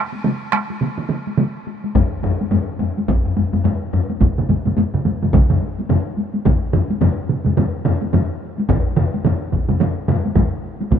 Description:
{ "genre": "japanese traditional, taiko drum ensemble", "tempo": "107 BPM", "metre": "4/4", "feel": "swing 60% on 16ths", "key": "none", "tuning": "none", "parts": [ { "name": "taiko ensemble", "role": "percussion", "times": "0.1-11.0 s", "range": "none", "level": "-23 LUFS", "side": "left 1 dB", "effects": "none" }, { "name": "taiko ensemble", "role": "percussion", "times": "0.2-11.0 s", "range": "none", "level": "-20 LUFS", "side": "right 6 dB", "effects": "none" }, { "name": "taiko ensemble", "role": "percussion", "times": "1.9-11.0 s", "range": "none", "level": "-20 LUFS", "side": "left 3 dB", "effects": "none" }, { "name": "taiko ensemble", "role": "percussion", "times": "2.0-11.0 s", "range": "none", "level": "-19 LUFS", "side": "equal", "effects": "none" } ], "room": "light reverb", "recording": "none", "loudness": "-16 LUFS", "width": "side -8 dB against mid", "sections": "0.0-6.5 A section; 6.5-11.0 B section", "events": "speeding up 0.0-11.0", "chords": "none" }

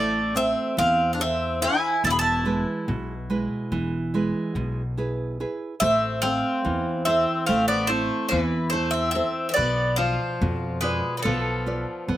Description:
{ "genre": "greek folk, Greek bouzouki band", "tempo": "143 BPM (eighths)", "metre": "9/8", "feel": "straight", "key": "A harmonic minor", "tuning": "A4 = 440 Hz", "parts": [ { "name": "Greek bouzouki", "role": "melody", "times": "0.0-12.2 s", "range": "A4 to B5", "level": "-24 LUFS", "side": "equal", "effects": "none" }, { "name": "Greek bouzouki", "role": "second line", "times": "0.0-12.2 s", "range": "E3 to G#4", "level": "-29 LUFS", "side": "left 4 dB", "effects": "slapback echo" }, { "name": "nylon-string guitar", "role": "accompaniment", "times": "0.0-12.2 s", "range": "B2 to D5", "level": "-28 LUFS", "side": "right 2 dB", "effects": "slapback echo" }, { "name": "upright bass", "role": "bass", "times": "0.0-12.2 s", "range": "E1 to F2", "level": "-29 LUFS", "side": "equal", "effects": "none" } ], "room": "little or no reverb", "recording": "recorded outdoors, with no room sound", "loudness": "-22 LUFS", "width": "side -13 dB against mid", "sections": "0.0-5.8 A section; 5.8-12.2 B section", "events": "none", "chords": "0.0 Am; 2.0 E; 5.8 Am; 9.6 Bdim" }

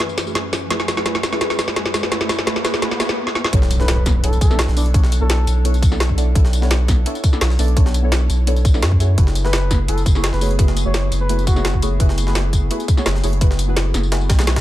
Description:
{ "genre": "liquid drum and bass", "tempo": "170 BPM", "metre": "4/4", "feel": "straight", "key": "B dorian", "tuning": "A4 = 440 Hz", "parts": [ { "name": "deep mellow chord stab", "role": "accompaniment", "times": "0.0-14.6 s", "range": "A3 to D5", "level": "-26 LUFS", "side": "equal", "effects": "chorus, phaser, tape echo" }, { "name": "glassy FM pad", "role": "sustained chords", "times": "0.0-14.6 s", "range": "F#2 to G#5", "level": "-31 LUFS", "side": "equal", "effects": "ensemble chorus, built-in reverb" }, { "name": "drum and bass drum kit", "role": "drums", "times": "0.0-14.5 s", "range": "hi-hat, snare drum, tambourine", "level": "-22 LUFS", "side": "equal", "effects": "none" }, { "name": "riser and impact", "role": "sound effects", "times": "0.1-4.9 s", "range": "none", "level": "-29 LUFS", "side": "right 1 dB", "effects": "none" }, { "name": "saturated sub bass", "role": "bass", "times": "3.5-14.6 s", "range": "F#1 to F#2", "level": "-17 LUFS", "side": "equal", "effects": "none" }, { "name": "electronic kick drum", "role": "drums", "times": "3.5-14.6 s", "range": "none", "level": "-15 LUFS", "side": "equal", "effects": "none" }, { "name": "jungle sampler-style drum kit", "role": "drums", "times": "3.5-14.6 s", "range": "hi-hat, snare drum", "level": "-29 LUFS", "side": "equal", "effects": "high-pass filter on hats, high-pass filter on snare, high-pass filter on room" }, { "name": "trumpet with bucket mute", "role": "melody", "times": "3.8-5.6, 9.4-11.8 s", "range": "F#4 to C#5", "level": "-28 LUFS", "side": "equal", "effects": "dub echo" } ], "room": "light reverb, digital ambience", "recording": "none", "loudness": "-15 LUFS", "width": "side -14 dB against mid", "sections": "0.0-3.5 A section; 3.5-14.6 B section", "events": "build-up 0.0-3.5; drum fill 0.0-3.2, 3.3; riser 0.1-3.2; filter sweep on synth stab 0.0-3.5; drop 3.5-14.6; impact 3.5-4.9", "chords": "0.0 F#m11; 3.5 Bm11; 9.0 F#m11" }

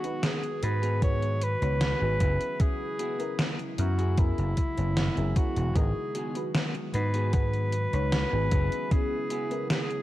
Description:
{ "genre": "vaporwave", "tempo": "76 BPM", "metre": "4/4", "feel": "straight", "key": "G# minor", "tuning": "A4 = 440 Hz", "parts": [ { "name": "clear alto saxophone", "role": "melody", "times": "0.0-10.0 s", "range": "E4 to C#5", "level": "-32 LUFS", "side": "equal", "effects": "tape echo" }, { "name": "mellow FM electric piano", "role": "accompaniment", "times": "0.0-10.0 s", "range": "B3 to C#5", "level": "-37 LUFS", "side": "left 1 dB", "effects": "phaser, lush chorus" }, { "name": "warbly tape-like pad", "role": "sustained chords", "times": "0.0-10.0 s", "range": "C#3 to F#4", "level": "-39 LUFS", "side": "equal", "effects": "chorus, built-in reverb" }, { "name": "clean electric guitar", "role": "riff", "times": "0.0-9.9 s", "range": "B3 to G#4", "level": "-40 LUFS", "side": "left 2 dB", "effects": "wide subtle chorus" }, { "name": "gated 80s digital drum machine", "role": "drums", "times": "0.0-10.0 s", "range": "hi-hat, snare drum", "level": "-30 LUFS", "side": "equal", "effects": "gated reverb, gated reverb snare, overdrive" }, { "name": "vintage slap bass", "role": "bass", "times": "0.6-8.7 s", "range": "E1 to G#2", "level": "-27 LUFS", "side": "equal", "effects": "none" }, { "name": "electronic kick drum", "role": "drums", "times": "1.0-9.1 s", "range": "none", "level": "-26 LUFS", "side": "equal", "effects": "overdrive" } ], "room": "light reverb", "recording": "cassette tape", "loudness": "-25 LUFS", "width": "side -15 dB against mid", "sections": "0.0-10.0 A section", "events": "none", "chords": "0.0 G#m7; 2.2 F#9sus4; 5.8 G#m7; 8.5 F#9sus4" }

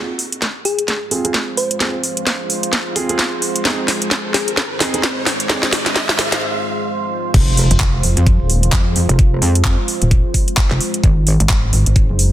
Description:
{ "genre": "bass house", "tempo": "130 BPM", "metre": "4/4", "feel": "swing 58% on 16ths", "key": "F minor", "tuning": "A4 = 440 Hz", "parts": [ { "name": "deep dark ambient pad", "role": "sustained chords", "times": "1.1-12.3 s", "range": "Ab3 to C5", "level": "-24 LUFS", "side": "right 1 dB", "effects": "chorus, built-in reverb, sidechain pumping" }, { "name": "warm baby grand piano", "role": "stabs", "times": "0.0-5.6 s", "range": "C4 to Ab4", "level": "-24 LUFS", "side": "right 3 dB", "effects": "sidechain pumping, low-pass filter, tape echo" }, { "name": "riser and impact", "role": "sound effects", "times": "0.0-9.2 s", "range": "none", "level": "-28 LUFS", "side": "right 1 dB", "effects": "none" }, { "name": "garage drum kit", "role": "drums", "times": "0.2-12.3 s", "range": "crash cymbal, handclaps, hi-hat, snare drum", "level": "-18 LUFS", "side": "equal", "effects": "soft clipping on snare" }, { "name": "electronic kick drum", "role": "drums", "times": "0.4-12.1 s", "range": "none", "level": "-15 LUFS", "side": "equal", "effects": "high-pass filter on kick, high-pass filter on room" }, { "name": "thumb-piano-like synth pluck", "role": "melody", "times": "0.7-4.5 s", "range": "Ab4 to C5", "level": "-24 LUFS", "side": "left 2 dB", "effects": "chorus, tape echo" }, { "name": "metallic wobble bass", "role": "bass", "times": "7.3-11.4 s", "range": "F1 to F2", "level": "-15 LUFS", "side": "equal", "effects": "distortion, chorus, overdrive, sidechain pumping" }, { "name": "pulsing pluck wobble bass", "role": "bass", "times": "7.7-12.3 s", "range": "Eb1 to F2", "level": "-15 LUFS", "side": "equal", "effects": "chorus, overdrive, sidechain pumping" } ], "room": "light reverb", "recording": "dense, heavily limited modern master", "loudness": "-14 LUFS", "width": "side -13 dB against mid", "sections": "0.0-7.3 A section; 7.3-12.3 B section", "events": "build-up 0.0-7.3; drum fill 0.0-6.4; riser 0.0-6.4; filter sweep on grand piano 0.0-7.3; break 6.4-7.3; drop 7.3-12.3; impact 7.3-9.2", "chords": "0.0 Fm; 3.7 Ab; 7.3 Fm; 11.0 Ab" }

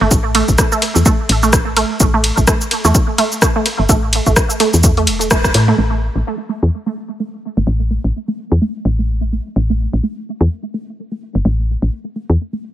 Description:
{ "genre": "minimal techno", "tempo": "127 BPM", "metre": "4/4", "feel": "swing 58% on 16ths", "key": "unclear", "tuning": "A4 = 440 Hz", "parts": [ { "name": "resonant blip pluck", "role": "riff", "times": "0.0-12.6 s", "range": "A3", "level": "-19 LUFS", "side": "right 3 dB", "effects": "chorus, phaser, sidechain pumping, analog delay" }, { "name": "woody FM bass", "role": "bass", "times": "0.0-12.4 s", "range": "E1 to A2", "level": "-15 LUFS", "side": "equal", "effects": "sidechain pumping" }, { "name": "electronic kick drum", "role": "drums", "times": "0.1-5.5 s", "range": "none", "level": "-14 LUFS", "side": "equal", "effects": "none" }, { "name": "punchy analog drum machine", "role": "drums", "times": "0.1-5.7 s", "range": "cabasa, hi-hat, ride cymbal, rim click", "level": "-17 LUFS", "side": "left 1 dB", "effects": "analog delay" } ], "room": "light reverb", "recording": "echo-heavy mix", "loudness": "-13 LUFS", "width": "side -12 dB against mid", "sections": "0.0-5.8 A section; 5.8-12.7 B section", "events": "drop 0.0-5.8; band accent 5.3", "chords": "0.0 A5" }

